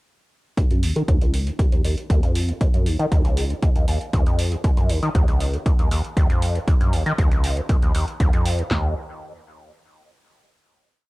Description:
acid house; 118 BPM; 4/4; straight; Eb minor; A4 = 441 Hz
liquid acid bass; riff; 0.6-8.9 s; Db2 to Eb3; -22 LUFS; equal; overdrive, analog chorus, sidechain pumping, tape echo
electronic hi-hat; drums; 0.6-8.7 s; -34 LUFS; right 2 dB; overdrive
punchy analog drum machine; drums; 0.6-8.8 s; handclaps, kick drum, snare drum, toms; -19 LUFS; equal
little or no reverb; dry, gritty hardware recording, cassette tape; -18 LUFS; side -21 dB against mid
0.6-8.7 groove; 8.7-10.7 final note
filter sweep on acid bass 0.6-8.7

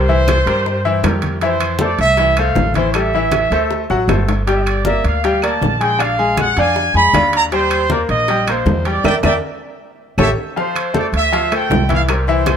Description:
latin, salsa; 157 BPM; 4/4; straight; D minor; A4 = 438 Hz
warm trumpet section; melody; 0.0-12.6 s; A4 to Cb6; -17 LUFS; right 2 dB
bright grand piano; accompaniment; 0.0-12.6 s; E3 to G#5; -19 LUFS; left 2 dB
upright bass; bass; 0.0-12.6 s; G1 to G2; -19 LUFS; equal
bongos; percussion; 0.1-12.6 s; -25 LUFS; left 6 dB
congas; percussion; 0.1-12.6 s; -24 LUFS; equal
claves; percussion; 0.3-12.6 s; -28 LUFS; right 1 dB
timbales; percussion; 0.3-12.6 s; -25 LUFS; right 5 dB
light reverb; -13 LUFS; side -8 dB against mid
0.0-10.6 A section; 10.6-12.6 A section
drum fill 3.9-4.5, 9.6-10.6; band accent 9.0-10.6
0.0 C7; 1.4 Fmaj7; 2.9 Am7; 3.7 D7; 4.5 Gm9; 6.0 Bb7b9; 7.5 Eb6; 9.0 Em7b5; 9.8 A7; 10.6 Dm11

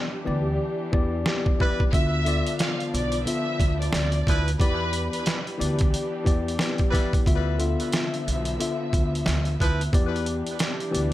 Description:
hip hop, boom-bap hip-hop; 90 BPM; 4/4; swing 60% on 16ths; D dorian; A4 = 439 Hz
tine electric piano; accompaniment; 0.0-11.1 s; D3 to E5; -28 LUFS; left 4 dB; cassette tape, high-pass filter, low-pass filter
dark studio string section; sustained chords; 0.0-11.1 s; D3 to E5; -34 LUFS; right 1 dB; high-pass filter, low-pass filter
upright bass; bass; 0.3-11.1 s; B1 to E2; -27 LUFS; right 1 dB
trip hop sampler-style drum kit; drums; 0.9-11.1 s; hi-hat, kick drum, snare drum; -24 LUFS; right 1 dB
clear horn section; stabs; 1.6-9.8 s; F3 to B4; -32 LUFS; equal; high-pass filter, low-pass filter, ping-pong delay
warm studio violin section; melody; 1.9-5.4 s; B4 to F5; -30 LUFS; equal; high-pass filter, low-pass filter, ping-pong delay
small room reverb; -22 LUFS; side -14 dB against mid
0.0-11.1 A section
break 0.0-1.9
0.0 Em7; 1.9 Dm69; 4.6 Em7; 7.3 Dm69; 9.9 Em7

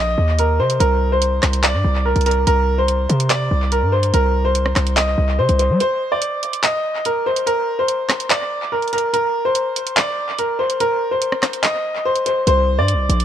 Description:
hip hop, drill; 144 BPM; 4/4; half-time; A4 = 440 Hz
clear baby grand piano; melody; 0.0-13.2 s; Bb4 to Eb5; -18 LUFS; equal; dub echo
hard-hitting 808-style bass; bass; 0.0-5.8, 12.5-13.2 s; Bb1 to G3; -17 LUFS; equal
drill drum kit; drums; 0.4-13.2 s; handclaps, hi-hat, rim click; -22 LUFS; equal; vintage 12-bit sampler grit, dub echo
light reverb; echo-heavy mix; -16 LUFS; side -10 dB against mid
0.0-13.2 A section
break 5.8-12.5
0.0 Cm; 0.8 Gmadd11/C (rootless); 5.8 N.C.; 12.5 C5

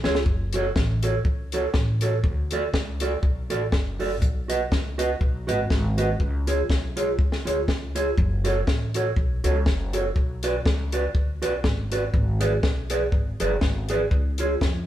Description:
ska; 121 BPM; 4/4; swing 55% on 8ths; F# harmonic minor; A4 = 440 Hz
mellow electric guitar; accompaniment; 0.0-14.7 s; E#4 to D#5; -26 LUFS; right 2 dB
compact cocktail drum kit; drums; 0.0-14.7 s; hi-hat, kick drum, snare drum; -24 LUFS; equal
upright bass; bass; 0.1-14.9 s; F#1 to E#2; -27 LUFS; equal
light reverb; band playing live in one room; -21 LUFS; side -12 dB against mid
0.3-14.9 A section
drum fill 0.0
0.3 F#m; 2.2 D; 4.2 B; 6.2 C#; 8.2 F#m; 10.2 Bm; 12.1 G#dim; 14.1 C#

